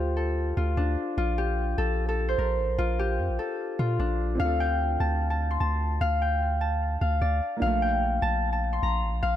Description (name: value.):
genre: hip hop, trap.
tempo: 149 BPM.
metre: 4/4.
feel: half-time.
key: D minor.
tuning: A4 = 440 Hz.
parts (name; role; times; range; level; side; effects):
Celtic harp; melody; 0.0-9.4 s; D4 to C6; -27 LUFS; left 2 dB; ping-pong delay.
long sustained 808-style bass; bass; 0.0-9.4 s; A1 to Bb2; -27 LUFS; equal; none.
dark baby grand piano; accompaniment; 4.4-9.4 s; A3 to A4; -35 LUFS; right 2 dB; none.
room: light reverb, small room ambience.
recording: none.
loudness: -24 LUFS.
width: side -11 dB against mid.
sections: 0.0-4.4 A section; 4.4-9.4 B section.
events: none.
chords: 0.0 D5; 1.2 Bbmaj7; 4.4 Dm7; 7.6 Bbmaj7.